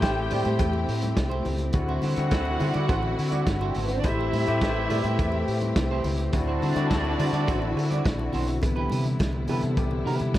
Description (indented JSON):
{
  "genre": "disco",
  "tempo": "105 BPM",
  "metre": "4/4",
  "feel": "straight",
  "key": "A dorian",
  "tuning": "A4 = 440 Hz",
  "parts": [
    { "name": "dark studio violin section", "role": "second line", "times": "0.0-8.3 s", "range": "G3 to G5", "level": "-31 LUFS", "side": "right 1 dB", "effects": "none" },
    { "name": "clean electric guitar", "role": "accompaniment", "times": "0.0-10.4 s", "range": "E4 to D5", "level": "-34 LUFS", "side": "right 6 dB", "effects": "none" },
    { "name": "overdriven tine electric piano", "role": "accompaniment", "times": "0.0-10.4 s", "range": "D3 to C5", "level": "-30 LUFS", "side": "left 4 dB", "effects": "none" },
    { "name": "rich studio string section", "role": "sustained chords", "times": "0.0-10.4 s", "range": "C3 to G4", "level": "-32 LUFS", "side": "equal", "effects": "none" },
    { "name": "overdriven fingered electric bass", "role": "bass", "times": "0.0-10.4 s", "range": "G1 to D3", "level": "-28 LUFS", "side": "equal", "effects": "none" },
    { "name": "vintage drum kit", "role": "drums", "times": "0.0-10.4 s", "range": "hi-hat, kick drum, snare drum", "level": "-29 LUFS", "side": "equal", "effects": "none" },
    { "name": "cowbell", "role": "percussion", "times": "0.0-10.4 s", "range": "none", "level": "-41 LUFS", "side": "right 9 dB", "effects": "none" },
    { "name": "congas", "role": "percussion", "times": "0.3-10.4 s", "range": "none", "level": "-38 LUFS", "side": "left 2 dB", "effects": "none" }
  ],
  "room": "little or no reverb",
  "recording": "dark, warm production",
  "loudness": "-23 LUFS",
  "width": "side -14 dB against mid",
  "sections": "0.0-8.6 A section; 8.6-10.4 B section",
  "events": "tine electric piano solo 8.6-10.4",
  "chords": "0.0 Am7; 1.7 D9; 4.0 Am7; 6.3 D9; 8.6 Cmaj7",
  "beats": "0.03 0.60 1.17 | 1.75 2.32 2.90 3.47 | 4.04 4.62 5.19 5.76 | 6.34 6.91 7.48 8.06 | 8.63 9.20 9.78 10.35"
}